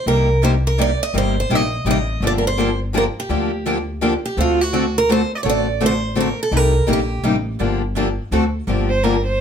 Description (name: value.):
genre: acoustic string swing (jazz manouche).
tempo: 167 BPM.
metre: 3/4.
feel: swing 62% on 8ths.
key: G minor.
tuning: A4 = 438 Hz.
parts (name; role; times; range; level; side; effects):
picked steel-string acoustic guitar; melody; 0.0-7.2 s; F4 to Eb5; -21 LUFS; right 3 dB; none.
picked steel-string acoustic guitar; accompaniment; 0.1-9.2 s; C3 to A4; -21 LUFS; left 5 dB; none.
picked steel-string acoustic guitar; accompaniment; 0.1-9.2 s; C3 to A4; -25 LUFS; right 6 dB; none.
upright bass; bass; 0.1-9.4 s; G1 to D2; -21 LUFS; equal; none.
warm violin; second line; 8.9-9.4 s; Bb4 to C5; -19 LUFS; right 2 dB; none.
room: moderate studio reverb, RT60 0.7 s.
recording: none.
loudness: -16 LUFS.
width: side -8 dB against mid.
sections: 0.0-8.7 A section.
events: none.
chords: 0.1 Cm7; 2.2 Gm7; 4.4 D7; 6.5 Cm7; 7.6 Gm7; 8.3 D7; 8.7 Gm7.